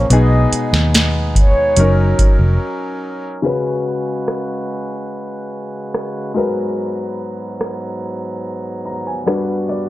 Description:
contemporary R&B; 72 BPM; 4/4; straight; A4 = 440 Hz
mellow horn-like synth lead; melody; 0.0-2.6 s; C#5 to D#5; -20 LUFS; right 1 dB; chorus, digital delay
warm grand piano; accompaniment; 0.0-9.9 s; A#2 to A#5; -21 LUFS; left 3 dB
hand-pumped harmonium; sustained chords; 0.0-9.9 s; G2 to A#5; -25 LUFS; right 1 dB
vintage muted fingered electric bass; bass; 0.0-2.6 s; E#1 to D#2; -14 LUFS; equal
booming analog drum machine; drums; 0.1-9.5 s; hi-hat, kick drum, rim click, snare drum; -15 LUFS; equal
digital ambience; low-pass filter; -15 LUFS; side -16 dB against mid
0.0-3.4 A section; 3.4-9.9 B section
break 2.6-3.4; filter sweep 3.4-9.9; grand piano fill 8.4-9.9
0.1 B6; 1.8 F#6; 3.4 C#7sus4; 6.4 G#m9; 9.3 Gmaj7
| 0.10 0.94 1.77 2.60 | 3.44 4.27 5.10 5.93 | 6.77 7.60 8.44 9.27

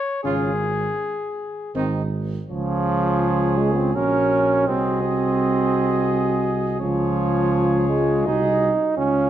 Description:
classical, brass quintet; 83 BPM; 3/4; rubato; Db major; A4 = 441 Hz
warm cornet; melody; 0.0-9.3 s; Ab4 to F5; -29 LUFS; left 4 dB
bright trombone; accompaniment; 0.2-9.3 s; Db3 to Eb4; -22 LUFS; right 3 dB
warm French horn; accompaniment; 0.2-9.3 s; C4 to Gb4; -25 LUFS; left 4 dB
mellow tuba; bass; 0.2-9.3 s; Ab1 to Db2; -24 LUFS; right 3 dB
warm trumpet; second line; 0.3-9.3 s; Eb4 to Bb4; -30 LUFS; right 7 dB
moderate recital hall reverb, RT60 1.6 s; dark, warm production; -19 LUFS; side -11 dB against mid
0.0-2.5 A section; 2.5-9.3 B section
0.2 Db5/Ab; 1.8 Ab; 2.5 Db; 4.0 Gb/Bb; 4.7 Ab7/C; 6.8 Db; 8.3 Ab7/C
| 0.24 1.00 1.75 | 2.50 3.23 3.95 | 4.68 5.39 6.10 | 6.81 7.53 8.26 | 8.97

